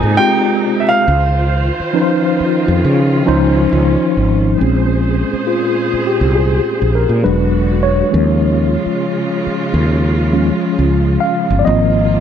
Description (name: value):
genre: R&B, neo-soul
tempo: 68 BPM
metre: 4/4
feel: swing 63% on 16ths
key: Bb dorian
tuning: A4 = 440 Hz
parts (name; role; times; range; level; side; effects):
- clear grand piano; melody; 0.0-3.7 s; E5 to Ab5; -18 LUFS; right 2 dB; tape echo
- mellow tine electric piano; accompaniment; 0.0-12.2 s; F3 to F5; -15 LUFS; left 1 dB; medium stereo tremolo
- warm studio string section; sustained chords; 0.0-12.2 s; Bb2 to C5; -21 LUFS; right 1 dB; none
- mellow fretless electric bass; bass; 0.0-12.2 s; E1 to Db3; -15 LUFS; equal; none
room: light reverb, small room ambience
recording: none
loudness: -12 LUFS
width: side -8 dB against mid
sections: 0.0-4.6 A section; 4.6-12.2 B section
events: tine electric piano solo 4.6-12.2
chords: 0.0 Ab69; 1.1 Dbmaj9; 4.6 Bbm9; 7.2 E9; 8.1 Eb9sus4; 11.6 Ab69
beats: 0.17 | 1.05 1.94 2.82 3.70 | 4.58 5.46 6.35 7.23 | 8.11 8.99 9.88 10.76 | 11.64